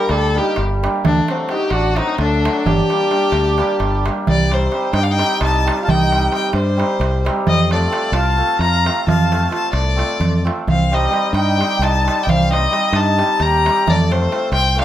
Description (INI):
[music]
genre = balkan folk, Balkan wedding band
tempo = 262 BPM (eighths)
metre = 7/8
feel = straight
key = unclear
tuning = A4 = 441 Hz
[part]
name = rich violin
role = melody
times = 0.0-14.8 s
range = C4 to Bb5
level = -19 LUFS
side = left 3 dB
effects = plate reverb
[part]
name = mellow accordion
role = second line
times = 0.0-14.8 s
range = G3 to G4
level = -24 LUFS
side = right 3 dB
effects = none
[part]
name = hammered dulcimer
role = accompaniment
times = 0.0-14.8 s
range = F#3 to A4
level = -23 LUFS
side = right 2 dB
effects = none
[part]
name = modern bright fingered electric bass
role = bass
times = 0.1-14.8 s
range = G1 to G2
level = -18 LUFS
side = equal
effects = none
[part]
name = darbuka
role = percussion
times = 0.1-14.8 s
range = none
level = -22 LUFS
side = right 4 dB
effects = none
[sound]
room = light reverb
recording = none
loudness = -14 LUFS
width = side -12 dB against mid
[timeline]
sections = 0.0-4.3 A section; 4.3-14.8 B section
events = none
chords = 0.0 Gm; 1.1 D; 2.7 Gm; 4.3 Cm; 7.5 F; 10.7 Cm; 13.9 F